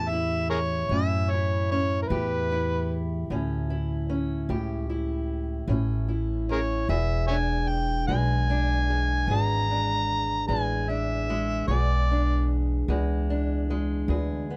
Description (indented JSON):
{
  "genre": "acoustic country blues, solo or duo",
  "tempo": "50 BPM (dotted quarters)",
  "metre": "12/8",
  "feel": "straight",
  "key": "E mixolydian",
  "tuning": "A4 = 440 Hz",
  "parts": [
    { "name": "overdriven harmonica", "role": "melody", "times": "0.0-12.5 s", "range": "G#4 to A#5", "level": "-30 LUFS", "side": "equal", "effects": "none" },
    { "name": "fingerpicked steel-string acoustic guitar", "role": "accompaniment", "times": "0.0-14.6 s", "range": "E2 to G#4", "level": "-32 LUFS", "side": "equal", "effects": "none" },
    { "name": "upright bass", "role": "bass", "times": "0.0-14.6 s", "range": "E1 to F#2", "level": "-29 LUFS", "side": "equal", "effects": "none" }
  ],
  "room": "light reverb",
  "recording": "close, detailed microphones",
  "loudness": "-26 LUFS",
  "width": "mono",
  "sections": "0.0-14.6 A section",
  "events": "none",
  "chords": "0.0 A7; 6.9 E7",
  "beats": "0.90 | 2.09 3.29 4.48 5.68 | 6.88 8.08 9.28 10.48 | 11.68 12.88 14.09"
}